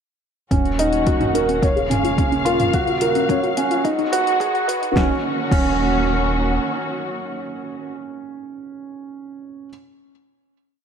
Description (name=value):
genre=piano and strings electronica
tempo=108 BPM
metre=4/4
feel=straight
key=Eb minor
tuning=A4 = 440 Hz
part: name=muted studio string section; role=sustained chords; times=0.5-7.9 s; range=Db3 to F5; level=-24 LUFS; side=left 1 dB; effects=none
part: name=soft round pluck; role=arpeggios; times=0.5-5.7 s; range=Db4 to Cb5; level=-26 LUFS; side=left 2 dB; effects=analog chorus, vintage 12-bit sampler grit, sidechain pumping, ping-pong delay
part: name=felt-muted upright piano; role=riff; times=0.5-9.7 s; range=Db4 to Db5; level=-21 LUFS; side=right 2 dB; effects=ping-pong delay
part: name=warm sub bass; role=bass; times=0.5-6.6 s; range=Eb1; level=-27 LUFS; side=equal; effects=sidechain pumping
part: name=deep house drum kit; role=drums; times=0.5-5.7 s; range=crash cymbal, hi-hat, snare drum, toms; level=-28 LUFS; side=equal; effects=overdrive
part: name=electronic kick drum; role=drums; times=0.5-5.7 s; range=none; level=-21 LUFS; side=equal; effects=overdrive
room=moderate echo chamber reverb, RT60 2.1 s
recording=high-pass filter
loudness=-17 LUFS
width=side -7 dB against mid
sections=0.5-5.0 build; 5.0-7.2 final chord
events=build-up 0.5-5.0; filter sweep on synth arpeggio sound 0.5-5.0; filter sweep 0.5-5.0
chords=0.5 Ebm7; 1.6 Bbm7/Eb; 2.7 Gbmaj7/Eb; 3.8 Abm7/Eb; 5.0 Ebm7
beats=| 0.51 1.07 1.62 2.18 | 2.74 3.29 3.85 4.40 | 4.96 5.51 6.07 6.62